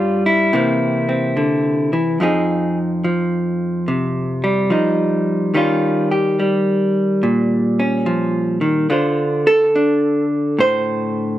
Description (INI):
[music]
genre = solo jazz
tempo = 72 BPM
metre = 4/4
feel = swing 66% on 8ths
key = unclear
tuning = A4 = 439 Hz
[part]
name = vintage hollow-body jazz guitar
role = solo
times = 0.0-11.4 s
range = F2 to C5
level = -15 LUFS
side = equal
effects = none
[sound]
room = light reverb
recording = recorded outdoors, with no room sound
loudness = -15 LUFS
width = side -13 dB against mid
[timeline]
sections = 0.0-11.4 A section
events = none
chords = 0.0 C#dim/G; 0.5 C7; 2.2 Fm9; 5.6 Eb9; 8.9 Dm7